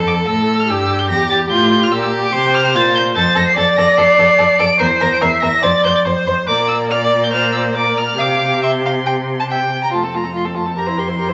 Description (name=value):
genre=quick classical-period movement for string quartet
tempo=144 BPM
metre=4/4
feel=straight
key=F major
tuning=A4 = 440 Hz
part: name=warm violin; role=second line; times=0.0-11.3 s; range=F4 to Bb5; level=-22 LUFS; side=equal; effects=none
part: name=warm viola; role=accompaniment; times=0.0-11.3 s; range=A3 to E5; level=-20 LUFS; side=equal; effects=none
part: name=warm cello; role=bass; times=0.0-11.3 s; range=E2 to C3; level=-22 LUFS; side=equal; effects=none
part: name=rich violin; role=melody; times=0.1-11.3 s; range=E5 to D7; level=-20 LUFS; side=equal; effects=none
room=wet large studio reverb, RT60 1.4 s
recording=vinyl crackle, nothing above 7.9 kHz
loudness=-15 LUFS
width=mono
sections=0.0-9.9 A section; 9.9-11.3 B section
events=none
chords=0.0 F; 0.7 Edim; 1.5 F/A; 3.2 F; 4.8 C7/E; 5.6 F5; 6.5 Bb; 8.2 Csus4; 9.9 F; 10.8 C7/F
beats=0.28 0.69 1.10 | 1.51 1.92 2.33 2.75 | 3.15 3.57 3.98 4.39 | 4.80 5.22 5.63 6.06 | 6.48 6.90 7.32 7.75 | 8.19 8.63 9.06 9.50 | 9.94 10.36 10.78 11.19